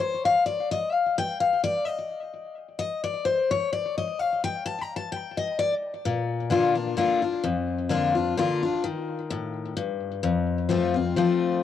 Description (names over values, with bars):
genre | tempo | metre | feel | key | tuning
bluegrass | 129 BPM | 3/4 | swing 54% on 8ths | Bb major | A4 = 441 Hz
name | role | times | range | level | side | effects
picked steel-string acoustic guitar | solo | 0.0-11.6 s | F2 to Bb5 | -24 LUFS | left 4 dB | cassette tape, analog delay
room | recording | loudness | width
wet booth ambience, RT60 0.3 s | home recording on cassette | -23 LUFS | side -10 dB against mid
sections
0.0-6.0 A section; 6.0-11.6 B section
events
steel-string acoustic guitar solo 0.0-6.0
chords
0.0 N.C.; 6.0 Bb; 8.8 Eb; 10.2 F